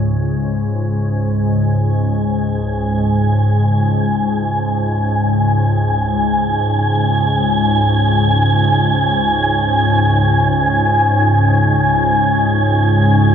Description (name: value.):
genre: dark ambient drone.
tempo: free time.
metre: none.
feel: none.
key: unclear.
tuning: A4 = 440 Hz.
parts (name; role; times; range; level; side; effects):
organ-like drone; drone; 0.0-13.3 s; C#2 to G#2; -14 LUFS; equal; ensemble chorus, built-in reverb.
wind-like tuned noise texture; texture; 1.9-13.3 s; G#5; -17 LUFS; right 1 dB; built-in reverb.
room: wet cathedral reverb, RT60 6.8 s.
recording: none.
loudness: -13 LUFS.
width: side -8 dB against mid.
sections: 0.0-13.3 A section.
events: none.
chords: 0.0 C#5.